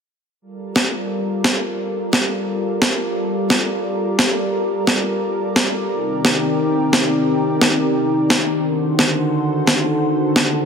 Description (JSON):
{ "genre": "liquid drum and bass", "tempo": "175 BPM", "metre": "4/4", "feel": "swing 53% on 16ths", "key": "G minor", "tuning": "A4 = 440 Hz", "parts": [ { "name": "lush unison pad", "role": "sustained chords", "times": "0.4-10.7 s", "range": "C3 to D5", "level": "-19 LUFS", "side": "equal", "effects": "chorus" }, { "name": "electronic snare drum", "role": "drums", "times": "0.8-10.4 s", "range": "none", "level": "-18 LUFS", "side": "equal", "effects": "small room ambience" } ], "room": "moderate plate reverb, RT60 1.9 s", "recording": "dense, heavily limited modern master", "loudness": "-16 LUFS", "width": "side -6 dB against mid", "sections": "0.4-10.7 A section", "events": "none", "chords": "0.4 Gm9; 5.9 Cm9; 8.6 D7b9" }